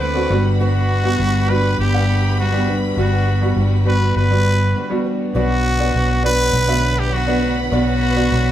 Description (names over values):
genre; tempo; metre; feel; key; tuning
pop; 101 BPM; 4/4; straight; B minor; A4 = 440 Hz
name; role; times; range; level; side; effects
growling trumpet; melody; 0.0-8.5 s; F#4 to B4; -21 LUFS; equal; none
rich studio violin section; second line; 0.0-8.5 s; B4 to D6; -30 LUFS; left 1 dB; none
clear concert grand piano; accompaniment; 0.0-8.5 s; G2 to F#5; -21 LUFS; equal; none
warm studio string section; sustained chords; 0.0-8.5 s; D3 to F#5; -29 LUFS; equal; none
fingerpicked steel-string acoustic guitar; riff; 0.0-8.5 s; B2 to C5; -28 LUFS; right 1 dB; none
vintage muted fingered electric bass; bass; 0.0-8.5 s; G1 to D2; -18 LUFS; equal; none
room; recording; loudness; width
wet studio ambience, RT60 0.5 s; band playing live in one room; -15 LUFS; side -11 dB against mid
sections
0.0-5.3 A section; 5.3-8.5 A section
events
break 4.8-5.3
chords
0.3 Gmaj7; 5.3 Bm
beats
0.01 | 0.60 1.19 1.79 2.38 | 2.98 3.57 4.16 4.76 | 5.35 5.94 6.54 7.13 | 7.72 8.32